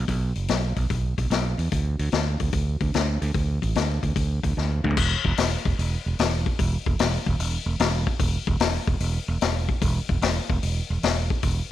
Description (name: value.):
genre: blues rock power trio and southern rock.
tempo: 148 BPM.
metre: 4/4.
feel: swing 68% on 8ths.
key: unclear.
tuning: A4 = 438 Hz.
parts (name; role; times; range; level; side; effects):
overdriven fingered electric bass; bass; 0.0-11.6 s; E1 to E2; -24 LUFS; right 2 dB; none.
vintage drum kit; drums; 0.1-11.6 s; crash cymbal, hi-hat, kick drum, snare drum, toms; -25 LUFS; left 3 dB; none.
room: little or no reverb.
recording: 1960s-style stereo.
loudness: -22 LUFS.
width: side -13 dB against mid.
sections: 0.0-5.0 A section; 5.0-11.4 B section.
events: drum fill 4.6-5.0.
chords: none.